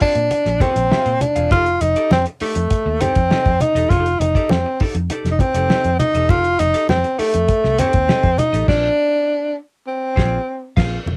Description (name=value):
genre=funk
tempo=100 BPM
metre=4/4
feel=straight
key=F mixolydian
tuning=A4 = 439 Hz
part: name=breathy tenor saxophone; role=melody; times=0.0-10.7 s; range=A3 to F4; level=-19 LUFS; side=equal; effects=cassette tape
part: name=clean electric guitar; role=accompaniment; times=0.0-11.0 s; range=C4 to F5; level=-30 LUFS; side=equal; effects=cassette tape
part: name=vintage muted fingered electric bass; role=bass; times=0.0-11.2 s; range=E1 to Bb2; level=-24 LUFS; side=equal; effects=none
part: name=cloth-damped thuddy drum kit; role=drums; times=0.0-11.0 s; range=crash cymbal, hi-hat, kick drum, snare drum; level=-21 LUFS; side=equal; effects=cassette tape
part: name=congas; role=percussion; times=0.3-11.2 s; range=none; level=-27 LUFS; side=equal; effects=none
room=light reverb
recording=home recording on cassette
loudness=-17 LUFS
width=mono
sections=0.0-11.1 A section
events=band accent 8.7-11.1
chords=0.0 Bb9; 1.5 F13; 8.7 Bb9